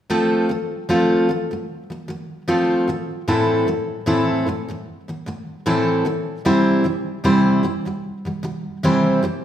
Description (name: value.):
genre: pop.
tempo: 76 BPM.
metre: 4/4.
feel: swing 55% on 16ths.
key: F major.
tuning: A4 = 443 Hz.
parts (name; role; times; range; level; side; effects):
picked steel-string acoustic guitar; accompaniment; 0.1-9.4 s; A2 to C5; -18 LUFS; equal; none.
room: wet recital hall reverb, RT60 1.4 s.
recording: recorded in a church or concert hall.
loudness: -17 LUFS.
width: side -10 dB against mid.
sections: 0.1-9.4 A section.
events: none.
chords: 0.1 F; 2.9 Am; 6.5 C.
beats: | 0.10 0.89 1.69 2.48 | 3.27 4.07 4.86 5.66 | 6.45 7.25 8.04 8.84.